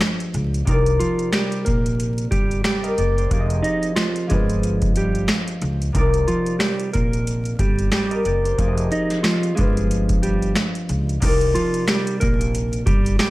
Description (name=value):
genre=hip hop, boom-bap hip-hop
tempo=91 BPM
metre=4/4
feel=swing 58% on 16ths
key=C minor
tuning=A4 = 439 Hz
part: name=concert harp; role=accompaniment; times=0.0-13.3 s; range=C3 to G5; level=-24 LUFS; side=left 1 dB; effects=high-pass filter, low-pass filter
part: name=booming analog drum machine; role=drums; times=0.0-13.3 s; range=crash cymbal, hi-hat, kick drum, snare drum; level=-22 LUFS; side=equal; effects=none
part: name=upright bass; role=bass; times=0.3-13.2 s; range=F1 to Db2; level=-23 LUFS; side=equal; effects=none
part: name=mellow electric guitar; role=melody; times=1.0-13.3 s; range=F3 to Eb5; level=-24 LUFS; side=right 2 dB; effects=spring reverb, high-pass filter, low-pass filter
room=digital ambience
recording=vinyl crackle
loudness=-18 LUFS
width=side -18 dB against mid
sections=0.0-11.2 A section; 11.2-13.3 B section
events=none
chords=0.0 G7b9; 0.7 Cm9; 3.3 Fm7; 4.3 G7b9; 5.9 Cm9; 8.6 Fm7; 9.6 G7b9; 11.2 Cm9